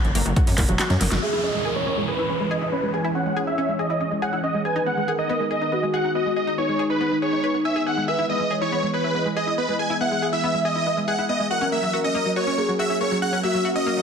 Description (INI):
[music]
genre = uplifting trance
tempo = 140 BPM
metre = 4/4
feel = straight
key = unclear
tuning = A4 = 440 Hz
[part]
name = analog pluck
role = arpeggios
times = 0.0-14.0 s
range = F#3 to G#5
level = -28 LUFS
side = left 1 dB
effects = wide subtle chorus, sidechain pumping, dub echo
[part]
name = gritty driven synth bass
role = bass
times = 0.0-1.2 s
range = E1 to F#2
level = -23 LUFS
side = equal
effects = sidechain pumping
[part]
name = big-room dance drum kit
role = drums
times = 0.0-1.2 s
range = handclaps, hi-hat, snare drum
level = -26 LUFS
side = equal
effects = overdrive, low-pass filter on hats, low-pass filter on snare
[part]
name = electronic kick drum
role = drums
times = 0.4-0.7 s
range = none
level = -20 LUFS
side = equal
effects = none
[part]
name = big supersaw lead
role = melody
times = 1.2-14.0 s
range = B4 to G#5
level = -24 LUFS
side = right 1 dB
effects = sidechain pumping, low-pass filter, digital delay
[part]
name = warm velvety synth lead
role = second line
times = 1.2-14.0 s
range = D#4 to E5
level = -26 LUFS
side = equal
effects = chorus, tape echo
[part]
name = lush unison pad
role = sustained chords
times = 1.2-14.0 s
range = D#3 to A#4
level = -29 LUFS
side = right 1 dB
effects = chorus, sidechain pumping
[part]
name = downlifter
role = sound effects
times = 1.2-4.7 s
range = none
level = -31 LUFS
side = right 1 dB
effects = none
[sound]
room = wet scoring stage reverb, RT60 1.5 s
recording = heavily compressed radio sound, multiband compression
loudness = -20 LUFS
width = side -6 dB against mid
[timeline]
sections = 0.0-1.2 A section; 1.2-14.0 B section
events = kick drops out 0.8-1.2; drum fill 0.8-1.2; band accent 1.1; filter sweep on supersaw synth 1.2-14.0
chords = 0.0 F#; 1.2 C#m; 4.7 G#m; 8.1 E; 11.5 F#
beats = 0.36 0.79 | 1.22 1.65 2.08 2.51 | 2.94 3.37 3.79 4.22 | 4.65 5.08 5.51 5.94 | 6.37 6.79 7.22 7.65 | 8.08 8.51 8.94 9.37 | 9.79 10.22 10.65 11.08 | 11.51 11.94 12.37 12.79 | 13.22 13.65